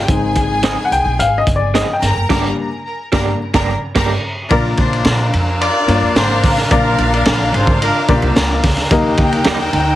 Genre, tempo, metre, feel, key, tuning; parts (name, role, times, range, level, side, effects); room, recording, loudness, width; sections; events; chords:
uptempo 1960s-style soul; 109 BPM; 4/4; straight; Bb mixolydian; A4 = 439 Hz
warm studio string section; second line; 0.0-10.0 s; D4 to Bb5; -20 LUFS; left 1 dB; tape echo
upright bass; bass; 0.0-10.0 s; Gb1 to Bb2; -19 LUFS; right 1 dB
dark baby grand piano; accompaniment; 0.1-9.7 s; G3 to G5; -18 LUFS; left 4 dB
crunchy breakbeat drum kit; drums; 0.1-9.9 s; crash cymbal, hi-hat, kick drum, ride cymbal, snare drum; -17 LUFS; equal
electric guitar through a small old amp; stabs; 0.6-4.2, 9.5-9.6 s; G3 to Ab4; -21 LUFS; right 6 dB; tremolo
warm horn section; second line; 4.5-8.3 s; C4 to D5; -20 LUFS; left 1 dB; tape echo
light reverb; heavily compressed radio sound; -12 LUFS; side -14 dB against mid
0.0-4.5 A section; 4.5-10.0 B section
grand piano solo 0.0-4.5; band accent 2.3-4.5
0.1 Ab; 2.0 Gm; 4.5 Bb; 8.9 Eb